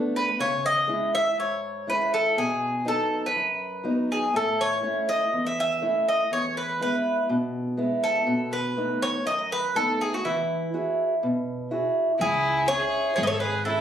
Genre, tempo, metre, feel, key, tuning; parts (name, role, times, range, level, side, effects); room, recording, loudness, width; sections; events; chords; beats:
greek folk, Greek bouzouki band; 122 BPM; 4/4; straight; E major; A4 = 440 Hz
fingerpicked acoustic archtop guitar; accompaniment; 0.0-13.8 s; E2 to G#4; -26 LUFS; right 1 dB
Greek bouzouki; melody; 0.2-13.8 s; E4 to E5; -25 LUFS; left 1 dB; slapback echo
rich violin; second line; 12.2-13.8 s; E4 to B4; -27 LUFS; right 1 dB
upright bass; bass; 12.2-13.8 s; G#1 to C#2; -34 LUFS; equal
light reverb; recorded on a phone in the room, club reverb; -23 LUFS; side -9 dB against mid
0.0-12.2 A section; 12.2-13.8 B section
0.4 C#m; 2.4 B; 4.3 A; 6.3 E; 8.3 B7; 10.2 Eadd9; 12.2 C#m
| 0.39 0.89 1.38 1.88 | 2.37 2.86 3.35 3.85 | 4.34 4.83 5.33 5.82 | 6.31 6.81 7.30 7.79 | 8.28 8.78 9.27 9.76 | 10.25 10.74 11.23 11.72 | 12.21 12.70 13.19 13.68